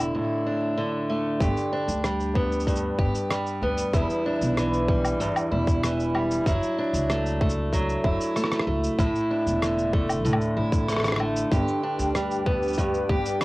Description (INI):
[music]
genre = folktronica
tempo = 95 BPM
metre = 4/4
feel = straight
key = unclear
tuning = A4 = 440 Hz
[part]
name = picked steel-string acoustic guitar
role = arpeggios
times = 0.0-13.4 s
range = E2 to G4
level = -24 LUFS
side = equal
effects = cassette tape, analog delay
[part]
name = upright bass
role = bass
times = 0.0-13.2 s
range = E1 to D2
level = -29 LUFS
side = equal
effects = none
[part]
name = electronic kick drum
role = drums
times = 1.4-13.2 s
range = none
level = -25 LUFS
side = equal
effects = overdrive
[part]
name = electronic shaker, rim click and woodblock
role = drums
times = 1.4-13.4 s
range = none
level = -30 LUFS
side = equal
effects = none
[part]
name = warbly tape-like pad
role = sustained chords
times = 11.8-13.4 s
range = D4 to G5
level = -30 LUFS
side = equal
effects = chorus, built-in reverb, cassette tape
[sound]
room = moderate booth ambience, RT60 0.2 s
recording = home recording on cassette, vinyl crackle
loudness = -22 LUFS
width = side -20 dB against mid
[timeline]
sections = 0.0-1.4 A section; 1.4-13.4 B section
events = none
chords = 0.0 Asus4; 1.4 G; 3.9 Em7; 6.5 Dadd9/F#; 9.0 Asus4; 11.5 G